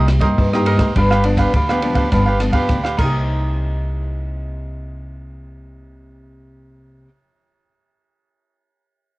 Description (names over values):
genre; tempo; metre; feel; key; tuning
samba and choro; 104 BPM; 4/4; straight; C minor; A4 = 445 Hz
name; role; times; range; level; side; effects
cavaquinho; accompaniment; 0.0-7.1 s; D4 to F5; -22 LUFS; right 2 dB; cassette tape
nylon-string guitar; accompaniment; 0.0-7.1 s; G2 to G4; -23 LUFS; left 2 dB; cassette tape
upright bass; bass; 0.0-7.0 s; G1 to G2; -19 LUFS; equal; none
compact cocktail drum kit; drums; 0.1-3.1 s; crash cymbal, kick drum, ride cymbal, rim click; -21 LUFS; equal; cassette tape
room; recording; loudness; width
little or no reverb; home recording on cassette; -15 LUFS; side -20 dB against mid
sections
0.0-3.3 A section; 3.3-5.6 B section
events
none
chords
0.0 Cm7; 0.9 G7; 3.0 Cm7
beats
0.37 | 0.95 1.53 2.11 2.69 | 3.26 3.84 4.42 5.00